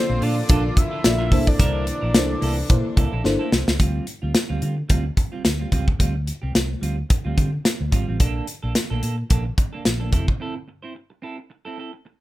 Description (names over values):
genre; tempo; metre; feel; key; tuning
early-eighties boogie funk; 109 BPM; 4/4; swing 56% on 16ths; D minor; A4 = 441 Hz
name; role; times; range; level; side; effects
fat analog lead; melody; 0.0-3.2 s; C5 to E5; -28 LUFS; equal; none
FM electric piano with soft pad layer; accompaniment; 0.0-3.6 s; Bb3 to F5; -26 LUFS; left 2 dB; chorus
warm studio string section; sustained chords; 0.0-3.8 s; C3 to A4; -34 LUFS; left 1 dB; none
clean electric guitar; riff; 0.1-12.1 s; G3 to C5; -30 LUFS; right 4 dB; wide subtle chorus
vintage muted fingered electric bass; bass; 0.1-10.3 s; F1 to D3; -24 LUFS; equal; none
modern studio drum kit; drums; 0.2-10.4 s; hi-hat, kick drum, snare drum; -20 LUFS; equal; none
room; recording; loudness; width
little or no reverb; rough home demo mix; -19 LUFS; side -16 dB against mid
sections
0.0-3.8 A section; 3.8-12.2 B section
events
drum fill 3.2-3.8; break 10.4-12.2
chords
0.0 Bbmaj7; 1.3 C13; 3.8 Dm7; 8.2 Bbmaj7; 10.1 Fmaj7 (rootless)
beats
0.49 1.04 | 1.59 2.15 2.70 3.25 | 3.80 4.35 4.90 5.45 | 6.00 6.55 7.10 7.65 | 8.20 8.75 9.30 9.85 | 10.40 10.95 11.50 12.05